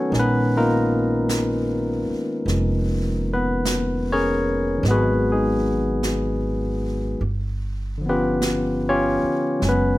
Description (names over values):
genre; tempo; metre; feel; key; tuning
jazz ballad; 51 BPM; 4/4; swing 69% on 8ths; unclear; A4 = 440 Hz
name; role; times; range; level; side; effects
barky tine electric piano; accompaniment; 0.0-10.0 s; D3 to Db5; -20 LUFS; left 1 dB; none
upright bass; bass; 0.1-10.0 s; F1 to Bb1; -25 LUFS; right 1 dB; none
jazz brush drum kit; drums; 0.1-10.0 s; brushed snare drum, hi-hat, snare drum; -31 LUFS; right 2 dB; none
room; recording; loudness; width
little or no reverb; none; -19 LUFS; side -17 dB against mid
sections
0.0-10.0 A section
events
none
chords
0.1 Bbm7; 4.8 Abm7; 7.2 G7#11